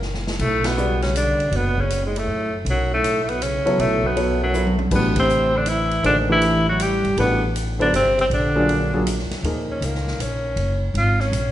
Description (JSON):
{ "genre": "modal jazz", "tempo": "159 BPM", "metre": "3/4", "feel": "swing 66% on 8ths", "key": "unclear", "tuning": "A4 = 440 Hz", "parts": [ { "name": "clear tenor saxophone", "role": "melody", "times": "0.0-11.5 s", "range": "F#3 to G4", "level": "-21 LUFS", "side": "equal", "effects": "none" }, { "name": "breathy trombone", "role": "second line", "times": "0.0-9.0 s", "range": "F#2 to G3", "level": "-26 LUFS", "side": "right 3 dB", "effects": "none" }, { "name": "upright bass", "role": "bass", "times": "0.0-11.5 s", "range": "Gb1 to F#2", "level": "-24 LUFS", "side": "equal", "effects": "none" }, { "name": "swinging big-band drum kit", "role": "drums", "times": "0.0-11.4 s", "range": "crash cymbal, hi-hat, kick drum, ride cymbal, snare drum, toms", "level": "-30 LUFS", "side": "equal", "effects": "none" }, { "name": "clear concert grand piano", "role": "accompaniment", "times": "0.8-1.4, 3.7-10.5 s", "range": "Bb2 to D5", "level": "-24 LUFS", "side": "left 1 dB", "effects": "none" } ], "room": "wet recital hall reverb, RT60 1.8 s", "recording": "recorded in a church or concert hall, nothing above 10.9 kHz", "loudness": "-18 LUFS", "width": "side -12 dB against mid", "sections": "0.4-9.4 A section; 9.4-11.5 B section", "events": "drum fill 0.0-0.4, 4.5-4.9; band accent 0.6, 5.1; tenor saxophone solo 9.4-11.5", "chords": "0.4 Bm11; 4.9 Am11; 8.3 A#7b13; 9.4 Ebm9", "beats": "0.02 | 0.40 0.77 1.15 | 1.53 1.90 2.28 | 2.65 3.03 3.41 | 3.79 4.16 4.54 | 4.92 5.29 5.67 | 6.04 6.42 6.80 | 7.18 7.55 7.93 | 8.31 8.68 9.06 | 9.44 9.81 10.19 | 10.57 10.95 11.32" }